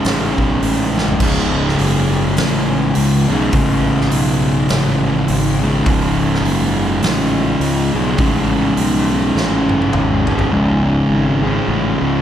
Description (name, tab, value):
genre	stoner and doom metal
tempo	103 BPM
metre	4/4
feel	swing 59% on 8ths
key	unclear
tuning	A4 = 439 Hz
part	thick fuzz guitar	riff	0.0-12.2 s	C#2 to C#3	-15 LUFS	equal	distortion
part	fuzz fingered electric bass	bass	0.0-12.2 s	C#1 to C#2	-19 LUFS	equal	overdrive
part	oversized low-tuned drum kit	drums	0.0-10.5 s	crash cymbal, hi-hat, kick drum, snare drum, toms	-22 LUFS	equal	none
room	studio reverb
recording	none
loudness	-13 LUFS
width	side -10 dB against mid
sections	0.0-1.2 A section; 1.2-10.5 B section; 10.5-12.2 C section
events	drum fill 0.9, 9.4-10.5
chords	0.0 C#5